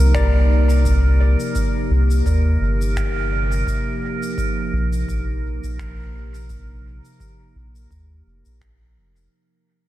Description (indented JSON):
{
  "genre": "ambient dub",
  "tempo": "85 BPM",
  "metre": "4/4",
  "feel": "swing 56% on 16ths",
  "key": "unclear",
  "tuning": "A4 = 440 Hz",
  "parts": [
    { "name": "warbly tape-like pad", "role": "sustained chords", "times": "0.0-9.3 s", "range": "C3 to G4", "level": "-27 LUFS", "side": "equal", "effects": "chorus, built-in reverb" },
    { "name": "Celtic harp", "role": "arpeggios", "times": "0.0-2.7 s", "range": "Bb4 to D5", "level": "-31 LUFS", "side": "left 2 dB", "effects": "tape echo" },
    { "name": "soft dub sub bass", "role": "bass", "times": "0.0-9.3 s", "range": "F1 to Eb2", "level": "-18 LUFS", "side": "equal", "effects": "none" },
    { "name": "drifting glass-harmonics texture", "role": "texture", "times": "0.0-9.3 s", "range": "Bb4", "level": "-30 LUFS", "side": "right 3 dB", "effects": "chorus, built-in reverb" },
    { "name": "electronic kick drum", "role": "drums", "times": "0.1-8.8 s", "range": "none", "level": "-26 LUFS", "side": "equal", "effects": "none" },
    { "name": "finger snaps and cabasa", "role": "drums", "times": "0.1-9.3 s", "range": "none", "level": "-36 LUFS", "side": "left 2 dB", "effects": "dub echo" }
  ],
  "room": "light reverb",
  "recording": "none",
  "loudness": "-17 LUFS",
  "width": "side -15 dB against mid",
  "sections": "0.0-9.3 A section",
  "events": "fade-out 0.0-9.3",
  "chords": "0.0 Cm9; 3.7 Bbsus4",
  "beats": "0.14 | 0.85 1.55 2.26 2.96 | 3.67 4.38 5.08 5.79 | 6.49 7.20 7.91 8.61"
}